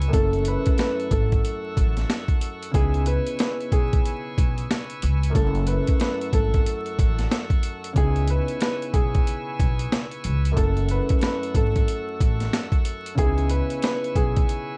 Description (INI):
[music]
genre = hip hop, boom-bap hip-hop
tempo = 92 BPM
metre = 4/4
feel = swing 62% on 16ths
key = C# minor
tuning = A4 = 438 Hz
[part]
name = concert harp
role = accompaniment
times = 0.0-14.8 s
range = F#2 to A4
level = -34 LUFS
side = equal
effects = cassette tape, high-pass filter, low-pass filter
[part]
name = bright tonewheel organ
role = sustained chords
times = 0.0-14.8 s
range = A4 to E6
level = -38 LUFS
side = equal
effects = overdrive, slow rotary speaker, high-pass filter, low-pass filter
[part]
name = upright bass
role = bass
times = 0.0-14.4 s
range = F#1 to C#2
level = -27 LUFS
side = equal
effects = none
[part]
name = boom bap sampler-style drum kit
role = drums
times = 0.0-14.7 s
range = hi-hat, kick drum, snare drum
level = -25 LUFS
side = equal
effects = vintage 12-bit sampler grit
[part]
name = warm upright piano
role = melody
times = 0.1-14.8 s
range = G#4 to B4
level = -31 LUFS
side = equal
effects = high-pass filter, low-pass filter, slapback echo
[sound]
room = light reverb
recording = dark, warm production, vinyl crackle, nothing above 10.7 kHz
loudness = -23 LUFS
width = mono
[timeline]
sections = 0.0-14.8 A section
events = none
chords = 0.1 F#m7; 2.7 C#m7; 5.4 F#m7; 8.0 C#m7; 10.6 F#m7; 13.2 C#m7